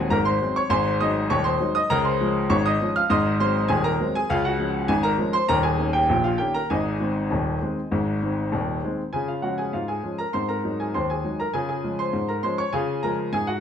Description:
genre	ragtime piano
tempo	100 BPM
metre	2/4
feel	straight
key	Db major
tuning	A4 = 440 Hz
part	clear grand piano	solo	0.0-13.6 s	Eb1 to F6	-21 LUFS	equal	none
room	wet large studio reverb, RT60 0.8 s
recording	band playing live in one room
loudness	-21 LUFS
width	side -8 dB against mid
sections	0.0-9.1 A section; 9.1-13.6 B section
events	none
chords	0.0 Ab7/Eb; 0.7 Ab7; 1.9 Db; 3.1 Ab7; 4.3 Db; 5.5 Eb7; 6.7 Ab; 9.1 Db; 10.3 Ab7; 11.5 Db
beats	0.11 | 0.71 1.30 | 1.90 2.50 | 3.10 3.70 | 4.30 4.89 | 5.49 6.10 | 6.71 7.32 | 7.92 8.53 | 9.14 9.74 | 10.34 10.94 | 11.54 12.14 | 12.73 13.33

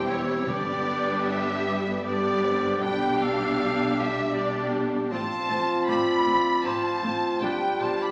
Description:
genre	classical, slow romantic movement for symphony orchestra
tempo	78 BPM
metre	3/4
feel	rubato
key	unclear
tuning	A4 = 440 Hz
part	warm symphonic violin section	melody	0.0-8.1 s	Db5 to B5	-33 LUFS	equal	none
part	clear clarinet	second line	0.0-8.1 s	F4 to G4	-38 LUFS	equal	none
part	large flute ensemble	second line	0.0-8.1 s	Db5 to B5	-35 LUFS	equal	none
part	warm oboe	second line	0.0-8.1 s	E4 to D5	-34 LUFS	equal	none
part	warm symphonic violin section	second line	0.0-7.9 s	D4 to G4	-38 LUFS	equal	none
part	dark symphonic viola section	accompaniment	0.0-7.9 s	G3 to D4	-36 LUFS	equal	none
part	mellow bassoon	accompaniment	0.0-8.1 s	B3 to D4	-40 LUFS	equal	none
part	dark French horn section	sustained chords	0.0-8.1 s	B3 to G4	-32 LUFS	equal	none
part	mellow trombone section	sustained chords	0.0-8.1 s	D3 to C4	-38 LUFS	equal	none
part	warm symphonic cello section	bass	0.0-7.9 s	E2 to B2	-36 LUFS	equal	none
part	warm symphonic double bass section	bass	0.0-7.9 s	E1 to B1	-40 LUFS	equal	none
part	timpani	percussion	0.5-1.6 s	G2	-42 LUFS	equal	none
room	wet recital hall reverb, RT60 1.6 s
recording	heard from further back in the room, small speaker sound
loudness	-25 LUFS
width	mono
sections	0.0-8.1 A section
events	none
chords	0.5 G; 2.8 G/B; 5.1 F/A; 7.4 G7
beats	| 0.47 1.26 2.05 | 2.83 3.60 4.35 | 5.11 5.88 6.65 | 7.42

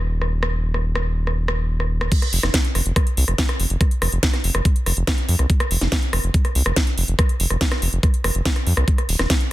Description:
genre	psychedelic trance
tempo	142 BPM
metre	4/4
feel	straight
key	unclear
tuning	A4 = 440 Hz
part	round analog bass	bass	0.0-9.3 s	Eb1 to F2	-20 LUFS	equal	tube saturation
part	drum and bass drum kit	drums	0.2-9.5 s	crash cymbal, hi-hat, ride cymbal, rim click, snare drum	-23 LUFS	equal	soft clipping on snare
part	electronic kick drum	drums	2.1-9.4 s	none	-19 LUFS	equal	overdrive
room	little or no reverb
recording	dense, heavily limited modern master, low-pass filter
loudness	-18 LUFS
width	side -16 dB against mid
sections	0.0-2.1 A section; 2.1-9.5 B section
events	filter sweep 0.0-2.1; drop 2.1-9.5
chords	none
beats	0.00 | 0.43 0.85 1.27 1.69 | 2.12 2.54 2.96 3.38 | 3.81 4.23 4.65 5.07 | 5.50 5.92 6.34 6.76 | 7.19 7.61 8.03 8.46 | 8.88 9.30

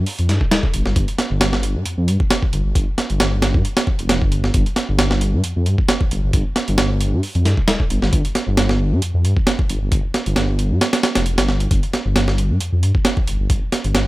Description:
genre	breakbeat, breaks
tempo	134 BPM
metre	4/4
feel	swing 54% on 16ths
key	unclear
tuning	A4 = 440 Hz
part	dark detuned saw bass	bass	0.0-14.1 s	F1 to G2	-18 LUFS	equal	none
part	breakbeat sampler-style drum kit	drums	0.1-14.1 s	hi-hat, kick drum, snare drum	-18 LUFS	equal	none
room	little or no reverb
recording	none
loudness	-16 LUFS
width	side -19 dB against mid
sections	0.0-14.1 A section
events	none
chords	none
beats	0.07 0.52 | 0.96 1.41 1.86 2.31 | 2.75 3.20 3.65 4.10 | 4.54 4.99 5.44 5.89 | 6.34 6.78 7.23 7.68 | 8.13 8.57 9.02 9.47 | 9.92 10.37 10.81 11.26 | 11.71 12.16 12.61 13.05 | 13.50 13.95

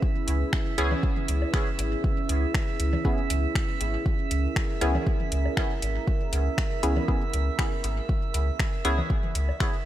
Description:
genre	dub techno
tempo	119 BPM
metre	4/4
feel	swing 54% on 16ths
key	unclear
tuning	A4 = 440 Hz
part	dark analog pad	sustained chords	0.0-9.9 s	C#4 to B4	-33 LUFS	right 3 dB	chorus, sidechain pumping
part	electronic kick drum	drums	0.0-9.7 s	none	-27 LUFS	equal	overdrive
part	drifting glass-harmonics texture	texture	0.0-9.9 s	E5	-36 LUFS	right 9 dB	chorus, built-in reverb, sidechain pumping
part	pure sine sub bass	bass	0.3-9.5 s	G#1 to C#2	-26 LUFS	equal	tube saturation, sidechain pumping
part	deep house drum kit	drums	0.3-9.7 s	finger snaps, hi-hat	-33 LUFS	left 1 dB	overdrive, dub echo
part	filtered dub chord stab	stabs	0.8-9.0 s	B3 to G#4	-31 LUFS	equal	chorus, phaser, sidechain pumping, dub echo
part	congas and woodblock	percussion	0.9-9.6 s	none	-37 LUFS	left 3 dB	overdrive, sidechain pumping on perc, dub echo
room	digital ambience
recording	vinyl crackle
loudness	-24 LUFS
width	side -13 dB against mid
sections	0.0-9.9 A section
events	none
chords	0.0 C#m7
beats	| 0.02 0.53 1.03 1.54 | 2.04 2.54 3.05 3.55 | 4.06 4.56 5.07 5.57 | 6.08 6.58 7.08 7.59 | 8.09 8.60 9.10 9.60

